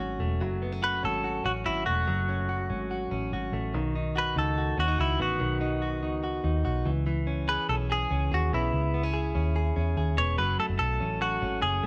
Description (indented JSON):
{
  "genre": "jangly indie pop",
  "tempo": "144 BPM",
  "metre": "4/4",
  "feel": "straight",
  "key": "F# dorian",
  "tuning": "A4 = 440 Hz",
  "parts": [
    { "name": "semi-hollow electric guitar", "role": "melody", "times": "0.0-11.9 s", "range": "E4 to C#5", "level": "-32 LUFS", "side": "equal", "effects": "none" },
    { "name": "direct-recorded clean electric guitar", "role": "arpeggios", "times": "0.0-11.9 s", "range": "D#3 to A4", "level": "-35 LUFS", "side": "equal", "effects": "tube saturation" },
    { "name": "vintage muted picked electric bass", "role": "bass", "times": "0.0-11.9 s", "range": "E1 to E2", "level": "-32 LUFS", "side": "equal", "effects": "none" }
  ],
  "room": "light reverb",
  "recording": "band playing live in one room",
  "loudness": "-28 LUFS",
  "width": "mono",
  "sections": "0.0-10.4 A section; 10.4-11.9 B section",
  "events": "none",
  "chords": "0.0 F#m; 3.7 B; 6.9 C#m7; 10.4 F#m",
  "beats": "0.00 | 0.42 0.83 1.25 1.66 | 2.08 2.50 2.91 3.33 | 3.74 4.16 4.58 4.99 | 5.41 5.82 6.24 6.65 | 7.07 7.48 7.90 8.31 | 8.73 9.15 9.56 9.98 | 10.39 10.80 11.22 11.63"
}